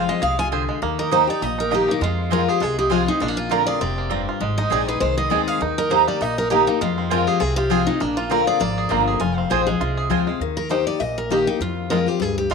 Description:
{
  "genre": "bluegrass",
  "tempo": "200 BPM",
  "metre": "4/4",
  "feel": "swing 55% on 8ths",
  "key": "F dorian",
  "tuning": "A4 = 441 Hz",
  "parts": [
    { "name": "bluegrass banjo", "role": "melody", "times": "0.0-12.5 s", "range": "Ab3 to Ab4", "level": "-26 LUFS", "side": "right 6 dB", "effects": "none" },
    { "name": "picked steel-string acoustic guitar", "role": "melody", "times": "0.0-12.5 s", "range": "D4 to Ab5", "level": "-24 LUFS", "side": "left 1 dB", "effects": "none" },
    { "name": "picked steel-string acoustic guitar", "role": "accompaniment", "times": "0.0-12.5 s", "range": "F2 to Ab4", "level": "-23 LUFS", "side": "left 10 dB", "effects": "none" },
    { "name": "mandolin", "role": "stabs", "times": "0.0-10.2 s", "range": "Bb3 to Bb5", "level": "-23 LUFS", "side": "right 15 dB", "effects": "none" },
    { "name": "upright bass", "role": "bass", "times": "0.0-12.5 s", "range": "F1 to F2", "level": "-28 LUFS", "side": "right 2 dB", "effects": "none" }
  ],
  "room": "light reverb",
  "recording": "1960s-style stereo with parts hard left and right",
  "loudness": "-18 LUFS",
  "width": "side -5 dB against mid",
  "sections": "0.8-10.4 A section; 10.4-12.5 A section",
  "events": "none",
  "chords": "0.0 Fm; 0.8 Eb; 2.0 Fm; 3.2 Bbadd9; 4.4 Ab; 5.6 Eb; 6.8 Fm; 8.0 Bbadd9; 9.2 Fm; 10.4 Eb; 11.6 Fm",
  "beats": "0.22 0.52 | 0.82 1.12 1.42 1.72 | 2.02 2.31 2.61 2.91 | 3.21 3.51 3.81 4.11 | 4.41 4.71 5.01 5.31 | 5.61 5.91 6.21 6.51 | 6.81 7.11 7.41 7.71 | 8.01 8.30 8.61 8.90 | 9.21 9.51 9.80 10.11 | 10.40 10.70 11.00 11.30 | 11.60 11.90 12.20 12.50"
}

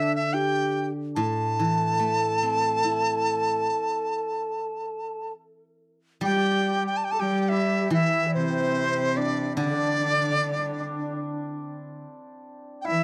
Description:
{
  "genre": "chinese traditional, Chinese chamber ensemble",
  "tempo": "72 BPM",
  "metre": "4/4",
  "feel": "rubato",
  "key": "A yu mode",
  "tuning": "A4 = 440 Hz",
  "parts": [
    { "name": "dizi", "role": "melody", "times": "0.0-13.0 s", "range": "C5 to A5", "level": "-28 LUFS", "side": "equal", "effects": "none" },
    { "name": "breathy bright low xiao", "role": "second line", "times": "0.0-13.0 s", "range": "D4 to D5", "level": "-33 LUFS", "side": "equal", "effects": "none" },
    { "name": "steel-string zither", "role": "accompaniment", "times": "0.0-12.0 s", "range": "A2 to E4", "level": "-33 LUFS", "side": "equal", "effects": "none" },
    { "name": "bright cello", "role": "second line", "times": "6.2-13.0 s", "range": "C3 to G3", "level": "-31 LUFS", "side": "equal", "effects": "none" },
    { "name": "hammered dulcimer", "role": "second line", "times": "6.2-13.0 s", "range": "C4 to A4", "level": "-38 LUFS", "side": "equal", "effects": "analog delay" }
  ],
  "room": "wet studio ambience, RT60 0.5 s",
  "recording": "none",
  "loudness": "-25 LUFS",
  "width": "mono",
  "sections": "0.0-6.2 A section; 6.2-13.0 B section",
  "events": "none",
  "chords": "none",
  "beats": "0.36 1.17 1.99 | 2.82 3.65 4.49 5.36 | 6.23 7.08 7.92 8.76 | 9.58 10.40 11.22 12.04 | 12.86"
}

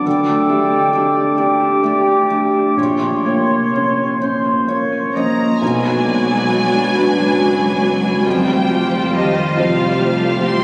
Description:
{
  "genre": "cinematic",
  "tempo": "42-48 BPM (dotted quarters)",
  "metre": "6/8",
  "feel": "rubato",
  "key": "unclear",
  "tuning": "A4 = 439 Hz",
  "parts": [
    { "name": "large flute ensemble", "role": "second line", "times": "0.0-5.2 s", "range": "G5 to C6", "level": "-24 LUFS", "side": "equal", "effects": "none" },
    { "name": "warm clarinet", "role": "second line", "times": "0.0-5.1 s", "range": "F4 to A4", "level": "-25 LUFS", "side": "equal", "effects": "none" },
    { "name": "warm oboe", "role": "second line", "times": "0.0-5.6 s", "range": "C5 to Eb5", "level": "-24 LUFS", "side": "equal", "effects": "none" },
    { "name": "felt-muted upright piano", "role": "accompaniment", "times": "0.0-10.6 s", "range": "Bb1 to Db5", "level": "-22 LUFS", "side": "equal", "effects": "none" },
    { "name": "concert harp", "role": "arpeggios", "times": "0.0-10.6 s", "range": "Bb2 to C6", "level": "-26 LUFS", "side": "equal", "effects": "none" },
    { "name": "rich studio violin section", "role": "melody", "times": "5.1-10.6 s", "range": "Eb5 to C6", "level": "-24 LUFS", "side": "equal", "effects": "none" },
    { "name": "rich studio cello section", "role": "bass", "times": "5.2-10.6 s", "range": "Eb3 to C4", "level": "-24 LUFS", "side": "equal", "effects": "none" },
    { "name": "rich studio violin section", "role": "second line", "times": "5.6-10.6 s", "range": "B3 to D5", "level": "-27 LUFS", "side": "equal", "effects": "none" },
    { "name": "rich studio viola section", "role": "accompaniment", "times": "5.6-10.6 s", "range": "F#3 to F#4", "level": "-22 LUFS", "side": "equal", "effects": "none" },
    { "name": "warm studio double bass section", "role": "bass", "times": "5.6-10.6 s", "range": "F#1 to F2", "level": "-28 LUFS", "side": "equal", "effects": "none" }
  ],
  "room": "wet church reverb, RT60 3.9 s",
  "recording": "recorded on a phone in the room, club reverb, nothing above 10.9 kHz",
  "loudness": "-16 LUFS",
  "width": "mono",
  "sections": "0.0-5.6 A section; 5.6-10.6 B section",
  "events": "none",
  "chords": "0.1 Dsus4; 2.8 Bbmadd9; 5.6 Bm; 8.3 Fadd9",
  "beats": "| 0.05 1.37 | 2.77 4.21 | 5.62 6.95 | 8.25 9.57"
}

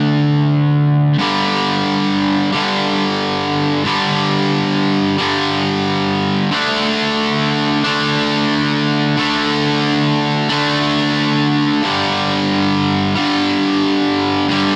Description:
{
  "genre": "rock",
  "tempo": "45 BPM (dotted quarters)",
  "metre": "6/8",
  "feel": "straight",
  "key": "unclear",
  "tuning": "A4 = 438 Hz",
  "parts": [
    { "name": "distorted electric guitar", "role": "solo", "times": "0.0-14.8 s", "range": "G2 to D4", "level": "-16 LUFS", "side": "equal", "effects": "overdrive, tape echo" }
  ],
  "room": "moderate studio reverb, RT60 0.5 s",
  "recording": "none",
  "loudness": "-16 LUFS",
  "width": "mono",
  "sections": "0.0-1.2 A section; 1.2-14.8 B section",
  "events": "none",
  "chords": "0.0 D5; 1.2 G5; 6.5 D5; 11.8 G5",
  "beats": "| 1.19 2.52 | 3.85 5.18 | 6.52 7.85 | 9.18 10.51 | 11.84 13.17 | 14.50"
}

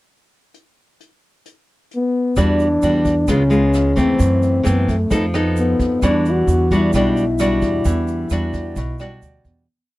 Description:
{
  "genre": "bossa nova",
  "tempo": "131 BPM",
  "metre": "4/4",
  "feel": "straight",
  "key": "E minor",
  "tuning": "A4 = 440 Hz",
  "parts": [
    { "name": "vintage brush drum kit", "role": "drums", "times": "0.5-9.6 s", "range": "hi-hat, kick drum, rim click", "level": "-27 LUFS", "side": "right 1 dB", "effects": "none" },
    { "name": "breathy trombone", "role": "melody", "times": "2.0-9.2 s", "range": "A3 to F#4", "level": "-19 LUFS", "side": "left 2 dB", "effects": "none" },
    { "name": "nylon-string guitar", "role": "accompaniment", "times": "2.4-9.7 s", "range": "F#2 to A4", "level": "-20 LUFS", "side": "equal", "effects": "none" },
    { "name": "upright bass", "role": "bass", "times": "2.4-9.7 s", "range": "B1 to F#2", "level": "-20 LUFS", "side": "right 1 dB", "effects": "none" },
    { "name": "egg shaker", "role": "percussion", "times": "2.4-9.7 s", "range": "none", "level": "-41 LUFS", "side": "right 18 dB", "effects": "none" }
  ],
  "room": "small room ambience",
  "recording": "dry, close 1970s-style studio recording",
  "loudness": "-15 LUFS",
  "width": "side -18 dB against mid",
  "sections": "0.5-2.4 pickup bar; 2.4-9.7 A section",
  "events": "fade-out 7.8-9.7",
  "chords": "0.5 N.C.; 2.4 Em9; 3.3 C#7; 4.2 F#m7b5; 5.1 F7#11; 6.0 Em9",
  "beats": "| 0.54 0.99 1.45 1.91 | 2.37 2.82 3.28 3.74 | 4.19 4.65 5.11 5.56 | 6.02 6.48 6.93 7.39 | 7.85 8.30 8.76 9.22"
}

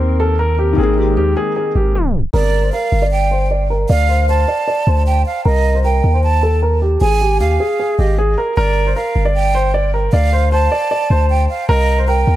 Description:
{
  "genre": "hip hop",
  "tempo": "154 BPM",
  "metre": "4/4",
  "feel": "half-time",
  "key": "G minor",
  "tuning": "A4 = 440 Hz",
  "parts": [
    { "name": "dark baby grand piano", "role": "melody", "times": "0.0-12.4 s", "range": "G4 to D5", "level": "-18 LUFS", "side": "right 1 dB", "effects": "low-pass filter" },
    { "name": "felt-muted upright piano", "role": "accompaniment", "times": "0.0-2.4 s", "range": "Eb3 to Ab4", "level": "-21 LUFS", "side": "left 6 dB", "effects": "none" },
    { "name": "hollow soft pad", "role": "sustained chords", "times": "0.0-2.3 s", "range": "Eb3 to Bb4", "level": "-25 LUFS", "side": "right 2 dB", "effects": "chorus" },
    { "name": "long sustained 808-style bass", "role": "bass", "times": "0.0-12.4 s", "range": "G1 to Eb2", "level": "-15 LUFS", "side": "equal", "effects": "none" },
    { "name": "breathy hollow jazz flute", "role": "second line", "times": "2.3-12.4 s", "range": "D5 to A5", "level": "-20 LUFS", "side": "right 4 dB", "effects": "digital delay" }
  ],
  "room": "small room ambience",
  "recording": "dark, warm production, tape stop",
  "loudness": "-13 LUFS",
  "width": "side -14 dB against mid",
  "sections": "0.0-2.3 A section; 2.3-12.4 B section",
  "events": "tape stop 1.9-2.3; filter sweep on grand piano 2.3-8.6",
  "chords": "0.0 Cm7; 0.8 Abadd9; 2.3 G5; 3.9 Dm; 5.5 Cm; 7.0 Ab5; 8.6 G5; 10.1 Dm; 11.7 Cm",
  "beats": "0.00 0.39 | 0.78 1.17 1.56 1.95 | 2.34 2.73 3.12 3.51 | 3.90 4.29 4.68 5.07 | 5.46 5.84 6.23 6.62 | 7.01 7.40 7.79 8.18 | 8.57 8.96 9.35 9.74 | 10.13 10.52 10.91 11.30 | 11.69 12.08"
}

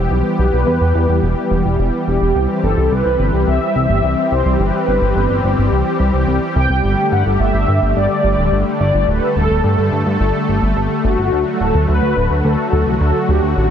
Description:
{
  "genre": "synthwave",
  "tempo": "107 BPM",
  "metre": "4/4",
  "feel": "straight",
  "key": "unclear",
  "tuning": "A4 = 440 Hz",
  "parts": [
    { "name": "warm analog pad", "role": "sustained chords", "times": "0.0-13.7 s", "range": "D3 to A4", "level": "-18 LUFS", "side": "left 1 dB", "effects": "chorus" },
    { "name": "chorused synth bass", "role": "bass", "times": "0.0-13.7 s", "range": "D1 to G2", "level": "-16 LUFS", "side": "equal", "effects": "none" },
    { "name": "mellow synth brass", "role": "melody", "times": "0.1-13.7 s", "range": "F#4 to G5", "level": "-19 LUFS", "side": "equal", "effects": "chorus, ping-pong delay" }
  ],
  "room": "light reverb",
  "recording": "dense, heavily limited modern master",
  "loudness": "-13 LUFS",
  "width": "side -8 dB against mid",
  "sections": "0.0-13.7 A section",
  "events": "none",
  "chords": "0.0 Em; 2.4 C; 6.8 Gsus2; 11.3 D",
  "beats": "| 0.11 0.67 1.23 1.79 | 2.35 2.91 3.47 4.03 | 4.59 5.16 5.72 6.28 | 6.84 7.40 7.96 8.52 | 9.08 9.64 10.20 10.76 | 11.32 11.88 12.45 13.01 | 13.57"
}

